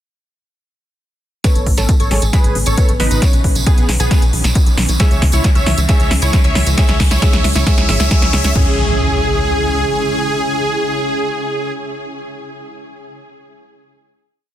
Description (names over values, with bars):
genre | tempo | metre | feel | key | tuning
uplifting trance | 135 BPM | 4/4 | straight | C# minor | A4 = 440 Hz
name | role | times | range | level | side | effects
dense compressed supersaw | melody | 1.4-11.7 s | B3 to E5 | -20 LUFS | right 1 dB | sidechain pumping, low-pass filter, digital delay
dark grand piano | second line | 1.4-11.7 s | E3 to C#5 | -27 LUFS | left 1 dB | dub echo
wide unison pluck | second line | 1.4-11.7 s | G#5 to E6 | -31 LUFS | equal | none
shimmering ambient pad | sustained chords | 2.3-11.7 s | C#3 to G#5 | -25 LUFS | left 1 dB | chorus, built-in reverb, sidechain pumping
electronic kick drum | drums | 1.4-8.6 s | none | -14 LUFS | equal | none
techno drum kit | drums | 1.4-8.6 s | crash cymbal, hi-hat, snare drum | -21 LUFS | equal | sidechain pumping on hats, sidechain pumping on cymbals
tambourine | percussion | 1.4-8.5 s | none | -26 LUFS | right 3 dB | none
riser and impact | sound effects | 3.3-11.8 s | none | -24 LUFS | equal | none
tight sequencer bass | bass | 1.6-9.8 s | G#1 to C#2 | -17 LUFS | equal | sidechain pumping
room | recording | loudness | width
little or no reverb | dense, heavily limited modern master | -12 LUFS | side -12 dB against mid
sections
1.4-8.6 build; 8.6-12.1 final chord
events
build-up 1.4-8.6; drum fill 1.4-8.6; filter sweep on supersaw synth 1.4-8.6; riser 3.3-8.6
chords
1.4 Aadd9; 3.2 Badd9; 5.0 C#m